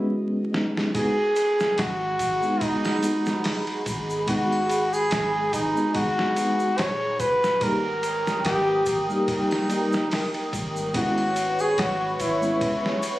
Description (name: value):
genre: trip hop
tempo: 72 BPM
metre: 4/4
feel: swing 55% on 16ths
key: G# minor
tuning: A4 = 441 Hz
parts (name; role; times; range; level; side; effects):
- mellow tine electric piano; accompaniment; 0.0-13.0 s; G3 to G4; -28 LUFS; equal; tremolo, tape echo
- boom bap sampler-style drum kit; drums; 0.5-13.2 s; hi-hat, kick drum, ride cymbal, snare drum; -30 LUFS; equal; none
- dark analog pad; sustained chords; 0.9-13.2 s; G#4 to D#6; -31 LUFS; equal; chorus
- trumpet with bucket mute; melody; 1.0-13.0 s; D#4 to C#5; -24 LUFS; equal; tape echo
- egg shaker and triangle; percussion; 1.0-13.2 s; none; -41 LUFS; equal; none
- soft 808-style bass; bass; 1.8-12.8 s; D#1 to G#1; -35 LUFS; equal; tube saturation
room: light reverb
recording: recorded on a phone in the room, studio reverb, vinyl crackle, compression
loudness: -21 LUFS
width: side -16 dB against mid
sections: 0.9-13.2 A section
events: break 0.0-0.9; drum fill 0.5-0.9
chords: 0.0 C#7(no3)/G#; 0.9 G#m7; 7.6 D#/G#; 10.9 C#m7/G#